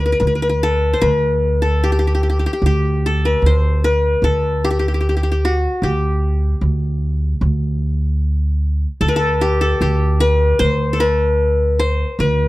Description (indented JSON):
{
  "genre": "turkish",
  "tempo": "75 BPM",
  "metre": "4/4",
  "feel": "straight",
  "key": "D makam hicaz",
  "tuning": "A4 = 440 Hz",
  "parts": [
    { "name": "qanun", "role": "melody", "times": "0.0-12.5 s", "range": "F#4 to D5", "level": "-18 LUFS", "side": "left 2 dB", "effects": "none" },
    { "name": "upright bass", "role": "bass", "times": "0.0-12.5 s", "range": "D2", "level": "-17 LUFS", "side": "right 1 dB", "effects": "none" }
  ],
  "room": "little or no reverb",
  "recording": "dry, close 1970s-style studio recording",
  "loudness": "-15 LUFS",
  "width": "side -18 dB against mid",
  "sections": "0.0-12.5 A section",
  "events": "none",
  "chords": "none"
}